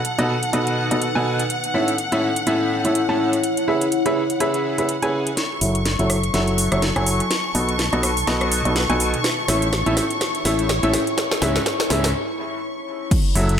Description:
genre	piano house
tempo	124 BPM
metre	4/4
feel	swing 57% on 16ths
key	F# dorian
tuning	A4 = 438 Hz
part	clear studio violin section	sustained chords	0.0-13.1 s	F#5 to C#6	-26 LUFS	left 2 dB	sidechain pumping
part	house drum kit	drums	0.0-13.6 s	crash cymbal, hi-hat, rim click, snare drum	-24 LUFS	equal	overdrive
part	deep dark ambient pad	texture	0.0-13.6 s	D#4 to B5	-27 LUFS	equal	chorus, built-in reverb, sidechain pumping
part	bright upright piano	riff	0.2-13.5 s	G#2 to A5	-22 LUFS	equal	sidechain pumping, low-pass filter, dub echo
part	modern bright fingered electric bass	bass	5.6-13.6 s	F#1 to C#2	-24 LUFS	equal	sidechain pumping, low-pass filter
part	electronic kick drum	drums	13.1-13.2 s	none	-18 LUFS	equal	overdrive
room	moderate plate reverb, RT60 1.7 s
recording	none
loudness	-18 LUFS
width	side -8 dB against mid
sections	0.0-5.4 A section; 5.4-13.1 B section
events	build-up 5.4-13.1; drum fill 5.4-12.1; filter sweep on upright piano 5.4-13.1; break 12.1-13.1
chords	0.0 B7; 1.5 A; 3.4 C#m7; 5.4 F#m7; 7.3 B7; 9.2 A; 11.2 C#m7

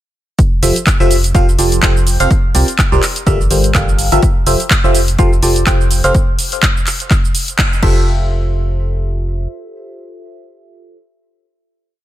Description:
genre	piano house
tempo	125 BPM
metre	4/4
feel	swing 56% on 16ths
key	F major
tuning	A4 = 442 Hz
part	electronic kick drum	drums	0.4-7.9 s	none	-14 LUFS	equal	none
part	house drum kit	drums	0.4-7.9 s	cabasa, crash cymbal, handclaps, hi-hat	-17 LUFS	equal	none
part	barking FM electric piano	riff	0.6-11.0 s	F3 to G5	-17 LUFS	equal	phaser, sidechain pumping, ping-pong delay
part	organ-like FM bass	bass	0.6-9.5 s	F1 to C2	-15 LUFS	equal	sidechain pumping
room	digital ambience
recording	none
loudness	-11 LUFS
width	side -13 dB against mid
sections	0.4-8.1 drop; 8.1-11.9 final hit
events	drop 0.4-8.1; band accent 7.6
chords	0.4 Fmaj9; 2.3 C9sus4; 3.0 Gm9; 4.2 Fmaj9; 6.1 N.C.; 7.8 Fmaj9

